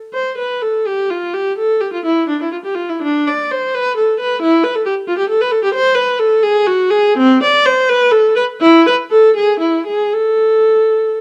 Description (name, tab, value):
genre	classical, baroque-style suite movement for unaccompanied viola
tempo	71-92 BPM (dotted quarters)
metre	6/8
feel	rubato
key	C major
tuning	A4 = 440 Hz
part	rich viola	solo	0.1-11.2 s	C4 to D5	-14 LUFS	equal	none
room	moderate stone room reverb, RT60 1.0 s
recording	dark, warm production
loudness	-14 LUFS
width	mono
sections	0.1-11.2 A section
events	none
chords	none